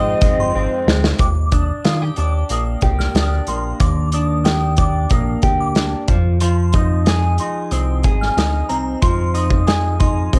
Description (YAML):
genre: indie pop, bedroom pop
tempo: 92 BPM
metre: 4/4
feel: straight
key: Eb major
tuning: A4 = 438 Hz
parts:
  - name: electric guitar through a small old amp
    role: melody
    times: 0.0-0.8 s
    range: Eb5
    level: -23 LUFS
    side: equal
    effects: subtle chorus, cassette tape, tape echo
  - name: glassy synth bell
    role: second line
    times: 0.0-10.4 s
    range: Bb5 to F6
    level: -29 LUFS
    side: equal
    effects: ensemble chorus, cassette tape, plate reverb, tape echo
  - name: clean electric guitar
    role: accompaniment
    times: 0.0-10.4 s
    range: F2 to Ab4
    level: -24 LUFS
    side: equal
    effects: lush chorus, warbly pitch drift, cassette tape, plate reverb
  - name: warm analog keys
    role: accompaniment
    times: 0.0-1.2 s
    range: Ab3 to G5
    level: -34 LUFS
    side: equal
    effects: none
  - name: warm analog pad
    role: sustained chords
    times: 0.0-1.2 s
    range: Ab3 to F4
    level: -33 LUFS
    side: equal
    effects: chorus, cassette tape, plate reverb
  - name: chorused synth bass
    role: bass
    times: 0.0-10.4 s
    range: G1 to Eb3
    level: -21 LUFS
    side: equal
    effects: transformer saturation
  - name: loose indie drum kit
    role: drums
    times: 0.2-10.4 s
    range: hi-hat, kick drum, snare drum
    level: -20 LUFS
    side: equal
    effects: cassette tape
room: light reverb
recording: home recording on cassette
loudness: -17 LUFS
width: mono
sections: 0.0-1.2 A section; 1.2-10.4 B section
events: drum fill 0.5-1.2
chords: 0.0 Fm7; 1.2 Ebmaj7; 6.1 Fm7